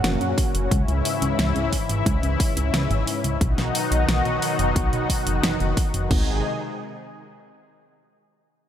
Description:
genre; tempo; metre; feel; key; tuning
synthwave; 89 BPM; 4/4; straight; G# minor; A4 = 439 Hz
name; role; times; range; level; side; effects
analog string pad; sustained chords; 0.0-6.4 s; G#2 to G#4; -25 LUFS; left 1 dB; ensemble chorus, sidechain pumping
mellow FM electric piano; stabs; 0.0-0.7 s; A#3 to F#4; -31 LUFS; equal; chorus, tape echo
chorused synth bass; bass; 0.0-6.4 s; F#1 to F#2; -24 LUFS; equal; none
pop drum kit; drums; 0.0-6.1 s; hi-hat, snare drum; -27 LUFS; equal; none
pop drum kit; drums; 0.4-6.3 s; crash cymbal, kick drum, toms; -23 LUFS; equal; none
room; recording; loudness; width
light reverb; none; -20 LUFS; side -10 dB against mid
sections
0.0-6.1 A section; 6.1-8.7 B section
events
filter sweep on analog synth bass 0.0-6.1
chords
0.0 F#; 0.7 C#m; 3.4 B; 6.1 G#

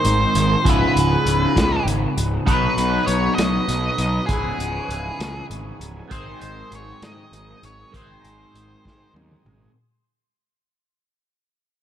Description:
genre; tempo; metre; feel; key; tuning
psychedelic rock; 66 BPM (dotted quarters); 6/8; straight; unclear; A4 = 442 Hz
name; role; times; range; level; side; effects
octave-fuzz lead guitar; melody; 0.0-9.1 s; G#4 to D#5; -24 LUFS; right 1 dB; distortion, tape echo
twangy electric guitar; riff; 0.0-9.7 s; C#2 to B4; -24 LUFS; equal; phaser, double-tracked left and right
fuzz picked electric bass; bass; 0.0-9.7 s; C#1 to G#2; -23 LUFS; equal; overdrive
vintage drum kit; drums; 0.0-9.6 s; hi-hat, kick drum, snare drum, toms; -23 LUFS; equal; none
combo organ; sustained chords; 2.5-9.7 s; E3 to B4; -36 LUFS; right 5 dB; none
room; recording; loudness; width
light reverb, small room ambience; none; -17 LUFS; side -10 dB against mid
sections
0.0-9.8 A section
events
fade-out 0.0-9.8; drum fill 8.8-9.8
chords
0.0 G#; 0.6 C#m7; 2.5 B; 4.3 C#m7; 6.1 G#7

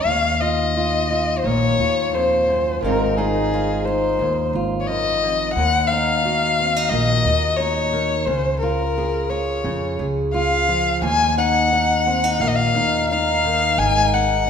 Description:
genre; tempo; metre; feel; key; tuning
acoustic folk-pop ballad; 87 BPM; 4/4; straight; unclear; A4 = 440 Hz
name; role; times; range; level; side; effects
dark violin; second line; 0.0-14.5 s; Ab4 to Ab5; -19 LUFS; left 3 dB; none
fingerpicked steel-string acoustic guitar; accompaniment; 0.0-14.5 s; Eb2 to Ab4; -22 LUFS; right 1 dB; none
upright bass; bass; 0.0-14.5 s; Ab1 to F2; -26 LUFS; equal; none
room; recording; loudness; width
wet scoring stage reverb, RT60 1.7 s; minimal, uncompressed stereo recording; -17 LUFS; side -7 dB against mid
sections
0.1-14.5 A section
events
violin solo 0.1-14.5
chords
0.1 Ebsus2; 2.8 Ab6; 5.5 Ebmadd9; 8.3 Bbm7/Db; 11.0 Ebsus2; 13.8 Ab5

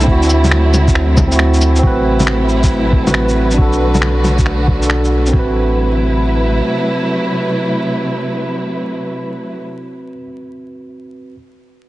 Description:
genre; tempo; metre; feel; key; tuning
future garage; 137 BPM; 4/4; swing 66% on 16ths; A dorian; A4 = 440 Hz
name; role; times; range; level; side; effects
tine electric piano; accompaniment; 0.0-11.4 s; C4 to B4; -18 LUFS; right 1 dB; sidechain pumping, low-pass filter, analog delay
warm studio string section; sustained chords; 0.0-9.6 s; C3 to B4; -19 LUFS; equal; sidechain pumping
soft dub sub bass; bass; 0.0-6.6 s; A1 to D2; -15 LUFS; equal; tube saturation, sidechain pumping
electronic shaker, cabasa, bongos and finger snaps; drums; 0.0-5.3 s; none; -18 LUFS; left 1 dB; none
backwards swelling texture; texture; 0.0-1.8 s; A3 to A4; -31 LUFS; equal; none
electronic kick drum; drums; 0.1-5.4 s; none; -14 LUFS; equal; none
room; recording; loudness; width
light reverb; heavily compressed radio sound, multiband compression, vinyl crackle, nothing above 10.8 kHz; -12 LUFS; side -17 dB against mid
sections
0.0-1.8 A section; 1.8-5.3 B section; 5.3-8.8 C section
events
filter sweep on tine electric piano 1.8-5.3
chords
0.1 D9; 1.8 Am69; 3.6 Bm7; 5.3 Am69

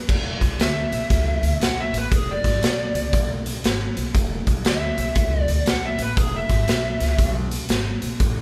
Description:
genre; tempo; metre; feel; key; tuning
electric blues shuffle; 118 BPM; 4/4; swing 64% on 8ths; E mixolydian; A4 = 440 Hz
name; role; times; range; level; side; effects
upright bass; bass; 0.0-8.4 s; E1 to D2; -28 LUFS; equal; none
raw garage drum kit; drums; 0.1-8.4 s; crash cymbal, hi-hat, kick drum, snare drum; -24 LUFS; equal; none
lead guitar through a small cranked amp; melody; 0.6-7.3 s; G#4 to F#5; -28 LUFS; equal; overdrive
room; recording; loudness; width
moderate large studio reverb, RT60 1.1 s; band playing live in one room; -22 LUFS; mono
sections
0.1-8.4 A section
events
lead electric guitar solo 0.1-8.4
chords
0.1 E5

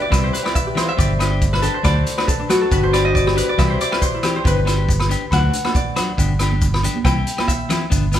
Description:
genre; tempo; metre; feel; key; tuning
highlife guitar band; 138 BPM; 4/4; swing 54% on 16ths; unclear; A4 = 440 Hz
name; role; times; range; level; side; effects
clean electric guitar; accompaniment; 0.0-8.2 s; E3 to G4; -26 LUFS; left 4 dB; none
Celtic harp; arpeggios; 0.0-8.2 s; D4 to G5; -21 LUFS; left 1 dB; none
fingered electric bass; bass; 0.1-8.2 s; G1 to D2; -20 LUFS; equal; none
vintage drum kit; drums; 0.1-8.2 s; hi-hat, kick drum, rim click; -21 LUFS; equal; none
agogo bells; percussion; 0.1-8.2 s; none; -28 LUFS; equal; none
maracas; percussion; 0.1-8.2 s; none; -32 LUFS; left 3 dB; none
congas; percussion; 5.7-7.8 s; none; -28 LUFS; right 5 dB; none
room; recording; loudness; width
moderate stone room reverb, RT60 1.4 s; band playing live in one room; -15 LUFS; side -11 dB against mid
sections
0.0-8.2 A section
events
harp solo 0.0-8.2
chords
0.1 C; 1.0 G; 1.9 D; 2.7 G; 3.6 C; 4.5 G; 5.3 D; 6.2 G; 7.1 C

